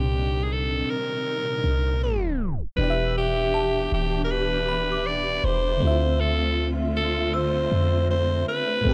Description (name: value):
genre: contemporary R&B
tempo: 79 BPM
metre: 4/4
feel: straight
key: E phrygian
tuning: A4 = 441 Hz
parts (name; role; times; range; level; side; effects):
- raspy alto saxophone; melody; 0.0-8.9 s; G4 to D5; -28 LUFS; equal; analog delay
- FM electric piano with soft pad layer; accompaniment; 0.0-8.9 s; A2 to E5; -31 LUFS; equal; chorus, phaser
- dark studio string section; sustained chords; 0.0-8.9 s; Bb2 to G4; -35 LUFS; equal; none
- clean 808-style bass; bass; 0.0-8.9 s; D1 to F2; -28 LUFS; equal; none
- synth chime; texture; 3.5-8.9 s; A5 to E6; -38 LUFS; equal; ensemble chorus, tremolo, analog delay
room: small room ambience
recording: dry, gritty hardware recording, tape stop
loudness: -24 LUFS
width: mono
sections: 0.0-2.8 A section; 2.8-8.9 B section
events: tape stop 2.0-2.8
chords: 0.0 Cm7; 2.8 Em7; 5.8 Dm7